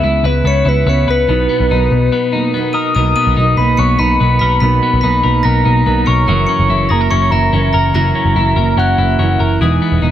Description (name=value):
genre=indie pop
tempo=144 BPM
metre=4/4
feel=straight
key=B major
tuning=A4 = 439 Hz
part: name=soft octave-layered synth lead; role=melody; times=0.0-9.4 s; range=B4 to D#6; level=-16 LUFS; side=left 1 dB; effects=chorus, ping-pong delay
part: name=glockenspiel with hard plastic mallets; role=second line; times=0.0-9.4 s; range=F#6 to E7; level=-25 LUFS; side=right 4 dB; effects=none
part: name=fingerpicked steel-string acoustic guitar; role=accompaniment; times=0.0-10.1 s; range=F#2 to E4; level=-19 LUFS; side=right 7 dB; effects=none
part: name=twelve-string electric guitar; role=arpeggios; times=0.0-10.1 s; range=B2 to B4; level=-18 LUFS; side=left 4 dB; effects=none
part: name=vintage muted picked electric bass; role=bass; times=0.0-10.1 s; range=E1 to C#2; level=-14 LUFS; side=equal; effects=none
room=light reverb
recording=none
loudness=-11 LUFS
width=side -11 dB against mid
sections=0.0-2.9 A section; 2.9-10.1 A section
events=break 2.1-2.9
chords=0.0 C#m7; 1.3 Bmaj7; 6.3 F#7; 9.6 Emaj7